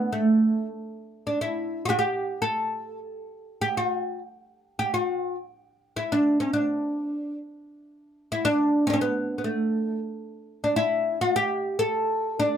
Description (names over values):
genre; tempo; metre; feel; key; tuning
arabic; 103 BPM; 4/4; straight; D maqam rast; A4 = 440 Hz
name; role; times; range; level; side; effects
oud; solo; 0.0-12.6 s; A3 to A4; -23 LUFS; equal; none
room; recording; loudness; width
light reverb; none; -23 LUFS; side -9 dB against mid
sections
0.0-12.6 A section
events
none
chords
none